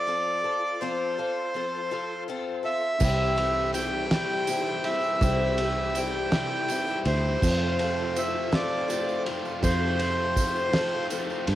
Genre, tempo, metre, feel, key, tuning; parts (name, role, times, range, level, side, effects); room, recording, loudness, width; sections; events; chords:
folk rock and heartland rock; 54 BPM (dotted quarters); 6/8; straight; A4 = 439 Hz
accordion; melody; 0.0-11.1 s; C5 to G5; -28 LUFS; right 1 dB; cassette tape, tape echo
picked twelve-string acoustic guitar; accompaniment; 0.0-11.6 s; C3 to A4; -32 LUFS; left 6 dB; plate reverb
bright tonewheel organ; sustained chords; 0.0-11.6 s; F4 to D6; -42 LUFS; right 1 dB
reed electric piano; accompaniment; 3.0-11.6 s; C4 to C5; -41 LUFS; right 9 dB
biting overdriven guitar; riff; 3.0-11.6 s; F2 to F4; -34 LUFS; right 1 dB
fingered electric bass; bass; 3.0-11.6 s; C2 to G2; -29 LUFS; right 1 dB
cloth-damped thuddy drum kit; drums; 3.0-11.6 s; crash cymbal, kick drum, ride cymbal, snare drum; -30 LUFS; right 1 dB
tambourine; percussion; 3.0-11.4 s; -41 LUFS; right 11 dB
moderate studio reverb, RT60 0.5 s; home recording on cassette; -24 LUFS; side -13 dB against mid
0.0-11.6 A section
0.0 F; 3.0 C; 7.4 F